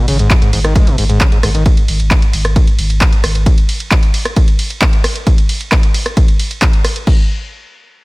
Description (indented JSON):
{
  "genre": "driving peak-time techno",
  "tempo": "133 BPM",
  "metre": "4/4",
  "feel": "straight",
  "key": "G# minor",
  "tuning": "A4 = 440 Hz",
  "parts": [
    { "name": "screaming distorted acid line", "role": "riff", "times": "0.0-1.6 s", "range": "G#2 to G#3", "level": "-17 LUFS", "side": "equal", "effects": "distortion, chorus, sidechain pumping, digital delay" },
    { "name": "warm sub bass", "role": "bass", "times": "0.0-3.5 s", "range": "G#1", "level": "-16 LUFS", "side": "equal", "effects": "overdrive, sidechain pumping, low-pass filter" },
    { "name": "punchy analog drum machine", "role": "drums", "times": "0.1-7.2 s", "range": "crash cymbal, handclaps, hi-hat, ride cymbal, rim click", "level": "-18 LUFS", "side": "equal", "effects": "sidechain pumping on hats, sidechain pumping on cymbals" },
    { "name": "electronic kick drum", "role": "drums", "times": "0.3-7.2 s", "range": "none", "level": "-12 LUFS", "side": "equal", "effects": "none" }
  ],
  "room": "digital ambience",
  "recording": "none",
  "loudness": "-10 LUFS",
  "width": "side -23 dB against mid",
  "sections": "0.0-7.1 A section",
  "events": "drop 0.0-7.1",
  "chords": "0.0 G#5; 7.1 N.C.",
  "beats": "0.30 0.76 1.21 | 1.66 2.11 2.56 3.01 | 3.46 3.91 4.37 4.82 | 5.27 5.72 6.17 6.62 | 7.07"
}